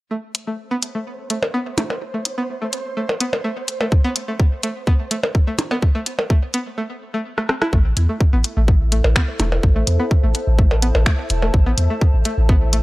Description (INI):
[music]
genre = minimal techno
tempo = 126 BPM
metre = 4/4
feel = straight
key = A minor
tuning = A4 = 442 Hz
[part]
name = string-like resonator pluck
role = riff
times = 0.1-12.8 s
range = A3 to E4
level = -26 LUFS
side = equal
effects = chorus, cassette tape, sidechain pumping, tape echo
[part]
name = flickering grainy texture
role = texture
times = 0.9-12.8 s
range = C5 to E5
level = -35 LUFS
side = right 2 dB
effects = built-in reverb, sidechain pumping
[part]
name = garage drum kit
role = drums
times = 0.3-12.8 s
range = finger snaps, hi-hat, rim click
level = -22 LUFS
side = equal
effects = none
[part]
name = percussion blips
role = percussion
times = 1.4-11.5 s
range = none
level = -22 LUFS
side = equal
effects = tape echo
[part]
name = electronic kick drum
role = drums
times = 3.9-12.6 s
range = none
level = -15 LUFS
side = equal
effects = none
[part]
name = punchy sub bass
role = bass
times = 7.7-12.8 s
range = E1 to E2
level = -17 LUFS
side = equal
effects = sidechain pumping
[part]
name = warbly tape-like pad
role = texture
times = 8.5-12.8 s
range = E4 to A5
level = -28 LUFS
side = left 1 dB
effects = chorus, built-in reverb, phaser, sidechain pumping
[sound]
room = little or no reverb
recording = dry, gritty hardware recording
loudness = -17 LUFS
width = side -20 dB against mid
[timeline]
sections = 0.1-7.7 A section; 7.7-12.8 B section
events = filter sweep on synth pluck 0.1-7.7, 7.7-12.8; break 6.8-7.7; drum fill 7.4-7.7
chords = 0.1 Am